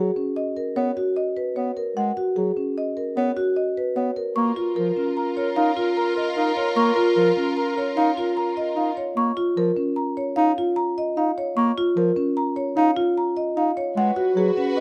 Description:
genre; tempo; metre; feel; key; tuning
classical, minimalist pattern music; 150 BPM; 6/4; straight; unclear; A4 = 442 Hz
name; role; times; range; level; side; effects
marimba with medium mallets; melody; 0.0-14.8 s; G#4 to C#6; -28 LUFS; equal; none
mellow bass clarinet; accompaniment; 0.0-14.5 s; E#3 to D#4; -26 LUFS; equal; none
marimba with soft mallets; arpeggios; 0.0-14.8 s; C#4 to D#5; -26 LUFS; equal; none
mellow clarinet; second line; 4.4-8.9, 14.0-14.8 s; A#4 to B4; -30 LUFS; equal; none
rich studio string section; sustained chords; 4.4-8.9, 14.0-14.8 s; E#4 to B4; -31 LUFS; equal; none
room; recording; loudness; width
light reverb; none; -23 LUFS; mono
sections
0.0-14.8 A section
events
none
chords
0.0 G#m9 (rootless); 4.4 A#m; 14.0 G#m7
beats
0.37 0.77 1.17 1.57 | 1.97 2.37 2.77 3.17 3.57 3.97 | 4.37 4.77 5.17 5.57 5.97 6.37 | 6.77 7.17 7.57 7.97 8.37 8.77 | 9.17 9.57 9.97 10.37 10.77 11.17 | 11.57 11.97 12.37 12.77 13.17 13.57 | 13.97 14.37 14.77

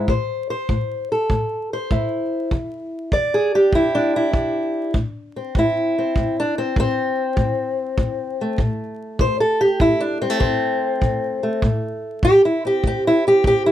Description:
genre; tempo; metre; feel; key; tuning
acoustic country blues, solo or duo; 99 BPM; 4/4; swing 68% on 8ths; A minor; A4 = 440 Hz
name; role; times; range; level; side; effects
fingerpicked old ladder-braced acoustic guitar; melody; 0.0-13.7 s; E2 to D5; -18 LUFS; equal; none
kick drum; drums; 0.1-13.6 s; none; -22 LUFS; equal; none
room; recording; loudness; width
wet booth ambience, RT60 0.2 s; vinyl crackle; -18 LUFS; side -11 dB against mid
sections
0.0-4.9 A section; 4.9-13.7 B section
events
steel-string acoustic guitar solo 4.9-13.7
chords
0.1 Am; 2.5 Em7; 4.9 Am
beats
| 0.08 0.69 1.30 1.91 | 2.51 3.12 3.73 4.34 | 4.95 5.55 6.16 6.77 | 7.37 7.98 8.59 9.19 | 9.80 10.41 11.01 11.62 | 12.23 12.84 13.44

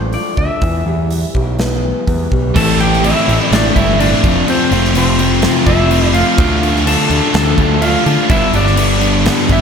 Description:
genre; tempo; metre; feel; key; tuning
quiet-loud alternative rock; 126 BPM; 4/4; straight; A minor; A4 = 440 Hz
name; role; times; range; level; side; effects
electric guitar through a small old amp; melody; 0.0-9.6 s; C4 to A5; -17 LUFS; equal; slapback echo
fingerpicked acoustic archtop guitar; arpeggios; 0.0-2.6 s; E3 to F4; -22 LUFS; left 3 dB; slapback echo
growling picked electric bass; bass; 0.0-9.6 s; F1 to D3; -16 LUFS; right 1 dB; overdrive
huge arena drum kit; drums; 0.1-9.6 s; crash cymbal, hi-hat, kick drum, snare drum; -17 LUFS; equal; none
scooped high-gain guitar; riff; 2.5-9.6 s; G2 to F4; -20 LUFS; right 10 dB; distortion, slapback echo
sludgy distorted guitar; riff; 2.5-9.6 s; F2 to D4; -20 LUFS; right 2 dB; overdrive, slapback echo
thick fuzz guitar; riff; 2.6-9.6 s; G2 to F4; -17 LUFS; left 10 dB; distortion, slapback echo
room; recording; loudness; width
moderate lush hall reverb, RT60 1.7 s, small room ambience; big arena sound; -11 LUFS; side -6 dB against mid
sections
0.0-2.6 A section; 2.6-9.6 B section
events
none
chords
0.0 Dm; 0.6 Em; 2.6 Am7; 4.2 F; 6.4 Dm; 8.3 G6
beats
0.14 | 0.62 1.11 1.59 2.08 | 2.56 3.04 3.52 4.00 | 4.48 4.96 5.43 5.91 | 6.39 6.87 7.34 7.82 | 8.30 8.78 9.25

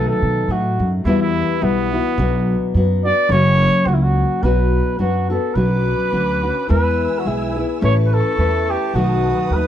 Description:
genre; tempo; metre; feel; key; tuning
mexican folk, mariachi; 106 BPM; 2/4; swing 55% on 8ths; B minor; A4 = 440 Hz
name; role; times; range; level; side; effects
mellow trumpet; melody; 0.0-0.9, 3.0-9.7 s; E4 to D5; -20 LUFS; right 2 dB; none
nylon-string guitar; accompaniment; 0.0-9.7 s; F#2 to B4; -19 LUFS; left 3 dB; none
upright bass; bass; 0.0-9.7 s; F#1 to B2; -19 LUFS; right 1 dB; none
clear trumpet; second line; 1.1-2.8 s; B3 to E4; -24 LUFS; right 6 dB; none
dark symphonic violin section; sustained chords; 5.6-9.7 s; B4 to E6; -31 LUFS; right 2 dB; none
room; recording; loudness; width
studio reverb; dry, close 1970s-style studio recording; -15 LUFS; side -10 dB against mid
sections
0.0-5.6 A section; 5.6-9.7 A section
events
none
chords
0.0 B7; 1.0 Emadd9; 2.2 Bm; 3.3 F#; 4.4 Bm; 5.6 Bmadd9; 6.7 E; 7.8 Aadd9; 9.0 B7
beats
0.47 | 1.04 1.60 | 2.17 2.74 | 3.30 3.86 | 4.42 4.99 | 5.56 6.13 | 6.69 7.25 | 7.82 8.39 | 8.95 9.52

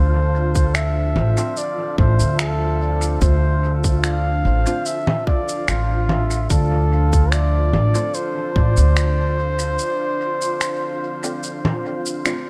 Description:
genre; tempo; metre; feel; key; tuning
ambient dub; 73 BPM; 4/4; straight; D minor; A4 = 440 Hz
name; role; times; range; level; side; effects
trumpet with bucket mute; melody; 0.0-12.3 s; F4 to F5; -26 LUFS; equal; dub echo
deep dark ambient pad; sustained chords; 0.0-12.5 s; D4 to A5; -33 LUFS; equal; chorus, built-in reverb
upright bass; bass; 0.0-9.8 s; A1 to D2; -20 LUFS; equal; tube saturation
wind-like tuned noise texture; texture; 0.0-12.5 s; F4; -37 LUFS; equal; built-in reverb
electronic kick drum; drums; 0.6-8.7 s; none; -20 LUFS; equal; studio reverb
electronic shaker, finger snaps and congas; drums; 0.6-12.4 s; none; -28 LUFS; equal; studio reverb, dub echo
filtered dub chord stab; stabs; 1.4-12.4 s; A3 to F4; -33 LUFS; equal; lush chorus, dub echo
room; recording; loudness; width
light reverb; none; -19 LUFS; mono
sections
0.0-12.5 A section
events
break 9.8-12.5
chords
0.0 Dm7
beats
0.75 1.57 2.39 | 3.21 4.04 4.86 5.68 | 6.50 7.33 8.15 8.97 | 9.79 10.61 11.43 12.26

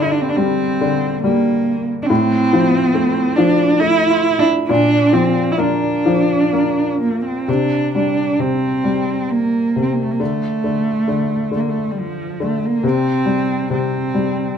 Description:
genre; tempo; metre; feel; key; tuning
celtic folk, Celtic slow air; 62-71 BPM; 3/4; rubato; unclear; A4 = 440 Hz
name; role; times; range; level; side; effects
dark cello; melody; 0.0-14.6 s; F3 to F4; -17 LUFS; right 3 dB; none
warm upright piano; accompaniment; 0.0-14.6 s; G2 to Bb3; -18 LUFS; left 4 dB; none
room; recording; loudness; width
moderate large studio reverb, RT60 0.9 s; band playing live in one room; -14 LUFS; side -8 dB against mid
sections
0.0-7.5 A section; 7.5-14.6 B section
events
none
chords
0.0 G5; 2.1 F/A; 4.7 Bb; 7.5 C5; 10.2 N.C.; 12.8 C5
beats
0.37 1.24 | 2.10 2.95 3.81 | 4.70 5.59 6.53 | 7.48 8.39 9.30 | 10.20 11.09 11.97 | 12.84 13.71

